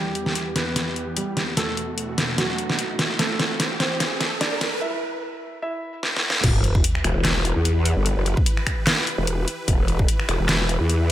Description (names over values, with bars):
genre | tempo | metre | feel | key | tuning
heavy wobble dubstep | 148 BPM | 4/4 | swing 55% on 16ths, half-time | E minor | A4 = 441 Hz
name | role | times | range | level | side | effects
dark concert grand piano | melody | 0.0-6.4 s | F#3 to E5 | -30 LUFS | right 2 dB | tape echo
supersaw chords | sustained chords | 0.0-11.1 s | E2 to B4 | -32 LUFS | equal | sidechain pumping, low-pass filter
riser and sub drop | sound effects | 1.4-8.1 s | none | -29 LUFS | equal | none
dubstep drum kit | drums | 0.2-11.1 s | crash cymbal, finger snaps, handclaps, hi-hat, snare drum | -23 LUFS | equal | none
growl bass | bass | 6.4-11.1 s | E1 to E2 | -21 LUFS | equal | chorus, overdrive
electronic kick drum | drums | 6.4-10.1 s | none | -21 LUFS | equal | none
room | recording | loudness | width
light reverb | high-pass filter | -20 LUFS | side -13 dB against mid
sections
0.0-6.4 A section; 6.4-11.1 B section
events
build-up 0.0-6.4; drum fill 0.0-4.8, 6.0-6.4; filter sweep on supersaw synth 0.0-6.4; riser 1.4-4.8; break 4.8-6.4; drop 6.4-11.1; impact 6.4-8.1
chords
0.0 Em; 1.6 Esus24; 3.2 Am/E; 4.8 N.C.; 6.4 Em